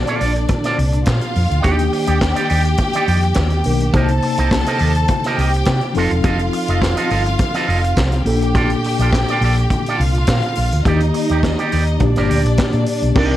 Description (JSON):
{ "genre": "disco", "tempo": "104 BPM", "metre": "4/4", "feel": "straight", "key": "unclear", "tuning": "A4 = 442 Hz", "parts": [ { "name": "clear studio string section", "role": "second line", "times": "0.0-13.3 s", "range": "D4 to A5", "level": "-22 LUFS", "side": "equal", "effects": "none" }, { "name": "mellow tine electric piano", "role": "accompaniment", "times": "0.0-13.4 s", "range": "Bb2 to C5", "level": "-22 LUFS", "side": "left 2 dB", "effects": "medium stereo tremolo" }, { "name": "electric guitar with an envelope filter", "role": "accompaniment", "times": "0.1-13.4 s", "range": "Eb4 to Eb5", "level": "-23 LUFS", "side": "right 4 dB", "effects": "none" }, { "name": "vintage drum kit", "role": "drums", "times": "0.1-13.3 s", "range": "crash cymbal, handclaps, hi-hat, kick drum, snare drum", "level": "-21 LUFS", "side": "equal", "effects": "none" }, { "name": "hollow-body short-scale fingered electric bass", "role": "bass", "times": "0.2-13.4 s", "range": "E1 to C3", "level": "-17 LUFS", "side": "equal", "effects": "none" } ], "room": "light reverb, small room ambience", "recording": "dark, warm production", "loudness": "-14 LUFS", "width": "side -13 dB against mid", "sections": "0.0-13.2 A section", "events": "none", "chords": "0.0 Bbmaj7; 1.6 Ebmaj7; 3.9 Cm7; 6.0 F7; 8.3 Bbmaj7; 10.9 Ebmaj7; 12.0 Bb6" }